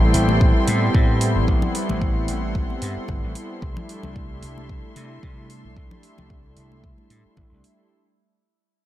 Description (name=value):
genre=nu-disco, nu disco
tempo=112 BPM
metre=4/4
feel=swing 56% on 16ths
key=unclear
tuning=A4 = 440 Hz
part: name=warm analog pad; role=accompaniment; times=0.0-7.9 s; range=G3 to E4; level=-26 LUFS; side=equal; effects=chorus, vintage 12-bit sampler grit, sidechain pumping, dub echo
part: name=warm chamber string section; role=sustained chords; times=0.0-7.9 s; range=A4 to C6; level=-31 LUFS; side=left 1 dB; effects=sidechain pumping
part: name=vintage slap bass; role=bass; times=0.0-7.6 s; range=G1 to C3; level=-23 LUFS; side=equal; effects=tube saturation
part: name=electronic hi-hat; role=drums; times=0.1-7.8 s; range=none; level=-30 LUFS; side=right 3 dB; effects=none
part: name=congas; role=percussion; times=0.3-7.5 s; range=none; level=-30 LUFS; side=left 4 dB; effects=none
part: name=electronic kick drum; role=drums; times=0.4-7.5 s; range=none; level=-21 LUFS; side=equal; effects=none
room=light reverb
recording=dark, warm production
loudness=-18 LUFS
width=side -14 dB against mid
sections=0.0-7.9 A section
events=fade-out 0.0-7.9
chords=0.0 Am7; 3.6 C6